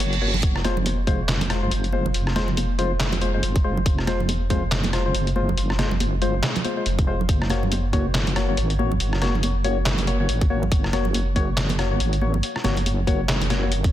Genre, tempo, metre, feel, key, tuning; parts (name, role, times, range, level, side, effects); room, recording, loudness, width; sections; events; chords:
deep dubstep; 140 BPM; 4/4; swing 59% on 16ths, half-time; F phrygian; A4 = 444 Hz
deep soft wobble bass; bass; 0.0-13.9 s; F1 to Ab1; -23 LUFS; equal; chorus
trip hop sampler-style drum kit; drums; 0.0-13.9 s; handclaps, hi-hat, rim click, snare drum; -27 LUFS; equal
percussive organ stab; stabs; 0.2-13.7 s; Ab3 to Db5; -27 LUFS; left 3 dB; chorus, dub echo
congas; percussion; 0.3-13.6 s; -31 LUFS; right 3 dB; dub echo
electronic kick drum; drums; 0.4-13.9 s; -21 LUFS; equal
light reverb, digital ambience; dense, heavily limited modern master; -20 LUFS; side -12 dB against mid
0.0-13.9 A section
break 0.0-0.4
0.4 Fm; 7.3 Gb